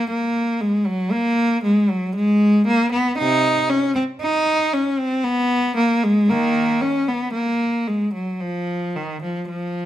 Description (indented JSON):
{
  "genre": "classical, baroque-style suite movement for unaccompanied cello",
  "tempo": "58 BPM",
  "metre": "3/4",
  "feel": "rubato",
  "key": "unclear",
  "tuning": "A4 = 440 Hz",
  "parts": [
    { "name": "rich cello", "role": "solo", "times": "0.0-9.9 s", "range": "B#2 to D#4", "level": "-18 LUFS", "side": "equal", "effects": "none" }
  ],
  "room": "moderate stone room reverb, RT60 0.9 s",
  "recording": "none",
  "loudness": "-17 LUFS",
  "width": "side -13 dB against mid",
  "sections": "0.0-9.9 A section",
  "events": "none",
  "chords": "none",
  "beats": "| 0.10 1.11 2.15 | 3.18 4.21 5.25 | 6.30 7.34 8.42 | 9.51"
}